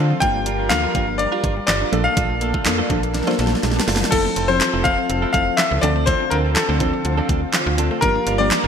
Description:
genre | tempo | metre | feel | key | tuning
dance-pop | 123 BPM | 4/4 | straight | F major | A4 = 444 Hz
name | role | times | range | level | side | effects
lush unison pad | sustained chords | 0.0-8.7 s | D3 to Bb4 | -26 LUFS | equal | chorus, sidechain pumping
mallet-like synth pluck | arpeggios | 0.0-8.7 s | F3 to F4 | -31 LUFS | left 3 dB | chorus, sidechain pumping, ping-pong delay
direct-recorded clean electric guitar | riff | 0.0-8.7 s | F3 to Bb4 | -28 LUFS | right 8 dB | wide subtle chorus
slap-like FM bass | bass | 0.0-8.7 s | F1 to D3 | -23 LUFS | equal | sidechain pumping
bright grand piano | melody | 0.2-8.7 s | A4 to G5 | -21 LUFS | left 3 dB | ping-pong delay
soft round pluck | accompaniment | 0.2-8.7 s | F3 to C5 | -26 LUFS | left 1 dB | chorus, sidechain pumping
pop drum kit | drums | 0.2-8.6 s | crash cymbal, handclaps, hi-hat, kick drum, snare drum | -22 LUFS | right 1 dB | overdrive, gated reverb
room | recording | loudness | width
moderate lush hall reverb, RT60 1.5 s | bright 1980s-style digital production | -16 LUFS | side -7 dB against mid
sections
0.0-4.1 A section; 4.1-8.7 B section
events
drum fill 3.1-4.1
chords
0.2 Gm7; 1.9 Bbmaj7; 4.1 Fmaj7; 5.8 Dm7; 8.0 Gm7

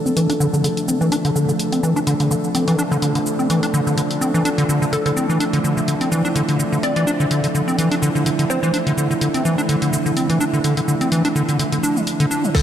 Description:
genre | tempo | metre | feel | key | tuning
acid house | 126 BPM | 4/4 | swing 55% on 16ths | D minor | A4 = 440 Hz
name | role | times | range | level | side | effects
warm analog pad | sustained chords | 0.0-12.6 s | F3 to A4 | -22 LUFS | right 1 dB | chorus, sidechain pumping
deep acid bass | riff | 0.1-12.6 s | D3 to D4 | -18 LUFS | equal | overdrive, analog delay
punchy analog drum machine | drums | 0.1-12.6 s | crash cymbal, hi-hat, rim click, shaker | -28 LUFS | left 1 dB | none
hollow square pluck | melody | 4.9-8.7, 12.5-12.6 s | A4 to D5 | -28 LUFS | left 1 dB | wide subtle chorus, tape echo
electronic kick drum | drums | 12.5-12.6 s | none | -16 LUFS | equal | none
room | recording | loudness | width
wet huge ambient reverb, RT60 4.8 s | dreamy mix soaked in reverb | -16 LUFS | side -10 dB against mid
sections
0.0-12.5 A section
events
none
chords
0.0 Dm

